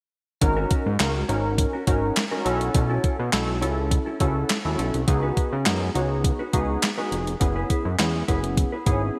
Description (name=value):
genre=early-eighties boogie funk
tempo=103 BPM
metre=4/4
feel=straight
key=G# phrygian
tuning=A4 = 436 Hz
part: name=barky tine electric piano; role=accompaniment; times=0.4-9.2 s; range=B3 to A#4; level=-29 LUFS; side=equal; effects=overdrive, analog chorus
part: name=mellow electric guitar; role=riff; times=0.4-9.2 s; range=C#4 to C#5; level=-36 LUFS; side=equal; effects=subtle chorus
part: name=fat analog bass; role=bass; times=0.4-9.1 s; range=E#1 to C#3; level=-28 LUFS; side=equal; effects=none
part: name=crisp 8-bit digital drum machine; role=drums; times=0.4-9.0 s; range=handclaps, hi-hat, kick drum, snare drum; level=-26 LUFS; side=equal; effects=gated reverb
room=light reverb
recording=bright 1980s-style digital production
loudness=-24 LUFS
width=mono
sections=0.4-9.2 A section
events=none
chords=0.4 G#9sus4; 2.5 B9sus4; 5.1 C#9sus4; 7.4 F#9sus4